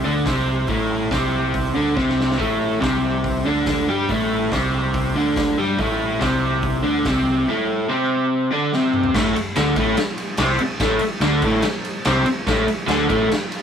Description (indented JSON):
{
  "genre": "garage rock duo or trio",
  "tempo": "142 BPM",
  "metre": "4/4",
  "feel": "straight",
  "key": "unclear",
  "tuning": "A4 = 440 Hz",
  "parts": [
    { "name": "crunchy overdriven guitar", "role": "riff", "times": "0.0-13.3 s", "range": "A2 to G4", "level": "-19 LUFS", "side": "equal", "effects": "none" },
    { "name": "growling picked electric bass", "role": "bass", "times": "0.1-13.3 s", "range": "A1 to G2", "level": "-25 LUFS", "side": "equal", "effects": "overdrive" },
    { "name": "raw garage drum kit", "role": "drums", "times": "0.3-13.6 s", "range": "crash cymbal, hi-hat, kick drum, ride cymbal, snare drum, toms", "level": "-25 LUFS", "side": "equal", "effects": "none" }
  ],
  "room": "moderate small room ambience, RT60 0.5 s",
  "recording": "rough rehearsal-room recording, warm saturation",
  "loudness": "-18 LUFS",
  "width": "side -8 dB against mid",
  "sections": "0.0-9.2 A section; 9.2-13.6 B section",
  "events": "drum fill 2.0-2.4, 8.7-9.2",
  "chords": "0.0 Amadd11",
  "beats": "0.26 | 0.69 1.12 1.55 1.97 | 2.40 2.82 3.25 3.67 | 4.10 4.52 4.95 5.37 | 5.79 6.21 6.63 7.05 | 7.48 7.90 8.31 8.73 | 9.15 9.57 9.99 10.40 | 10.82 11.23 11.65 12.06 | 12.48 12.89 13.31"
}